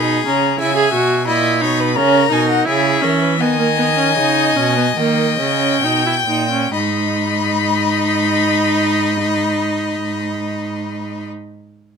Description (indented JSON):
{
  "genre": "classical, baroque-style fugue for string quartet",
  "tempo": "64-91 BPM",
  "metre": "4/4",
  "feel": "straight",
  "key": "G# minor",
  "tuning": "A4 = 440 Hz",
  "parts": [
    { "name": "rich violin", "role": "melody", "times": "0.0-11.3 s", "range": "E5 to B5", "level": "-20 LUFS", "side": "left 10 dB", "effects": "none" },
    { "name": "clear violin", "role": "second line", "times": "0.0-11.3 s", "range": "G#4 to G5", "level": "-22 LUFS", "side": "left 4 dB", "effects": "none" },
    { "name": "rich viola", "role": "accompaniment", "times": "0.0-11.3 s", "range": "A#3 to G#4", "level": "-18 LUFS", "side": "right 2 dB", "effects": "none" },
    { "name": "rich cello", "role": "bass", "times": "0.0-11.3 s", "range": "G#2 to E3", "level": "-21 LUFS", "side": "right 6 dB", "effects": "none" }
  ],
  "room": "light reverb",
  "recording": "close, detailed microphones",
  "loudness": "-14 LUFS",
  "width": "side -6 dB against mid",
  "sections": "0.0-6.7 A section; 6.7-10.5 B section",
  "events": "slowing down 0.0-6.7",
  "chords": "0.0 G#m; 0.6 C#m; 2.0 A#dim; 3.4 G#m/D#; 5.0 D#7; 6.7 G#m"
}